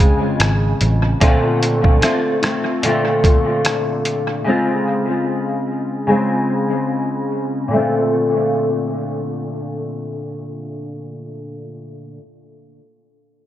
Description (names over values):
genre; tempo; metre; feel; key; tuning
indie pop, bedroom pop; 74 BPM; 4/4; swing 55% on 16ths; Bb major; A4 = 440 Hz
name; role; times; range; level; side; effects
nylon-string guitar; accompaniment; 0.0-12.3 s; Bb2 to F4; -18 LUFS; left 1 dB; ensemble chorus, warbly pitch drift, low-pass filter, analog delay
vintage muted picked electric bass; bass; 0.0-1.1 s; F1 to A1; -17 LUFS; equal; none
trip hop sampler-style drum kit; drums; 0.0-4.3 s; hi-hat, kick drum, rim click; -18 LUFS; right 1 dB; analog delay
room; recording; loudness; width
light reverb, digital ambience; echo-heavy mix; -15 LUFS; side -12 dB against mid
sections
0.0-7.7 A section; 7.7-11.0 B section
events
filter sweep on nylon-string guitar 0.0-7.7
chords
0.0 Dbmaj7; 1.2 Bbmaj9; 4.5 Dbmaj7; 7.7 Bbmaj9